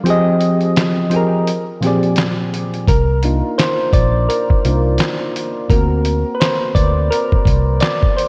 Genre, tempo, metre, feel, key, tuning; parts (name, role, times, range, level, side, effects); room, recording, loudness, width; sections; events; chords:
lo-fi hip hop; 85 BPM; 4/4; swing 60% on 16ths; C minor; A4 = 440 Hz
soft electric-piano-like synth keys; accompaniment; 0.0-8.3 s; Bb2 to Eb5; -19 LUFS; equal; chorus, cassette tape, low-pass filter
lo-fi sampler-style drum kit; drums; 0.1-8.3 s; handclaps, hi-hat, kick drum, snare drum; -20 LUFS; equal
vintage muted fingered electric bass; bass; 2.9-7.8 s; Bb1 to D2; -19 LUFS; equal
moderate lush hall reverb, RT60 1.8 s; dreamy mix soaked in reverb, cassette tape; -16 LUFS; mono
0.0-2.9 A section; 2.9-8.3 B section
filter sweep on synth keys 0.0-2.9; break 0.1-2.9; synth keys solo 2.9-8.3
0.1 Fm9; 1.5 Bb13; 2.9 Cm11; 5.7 Daug7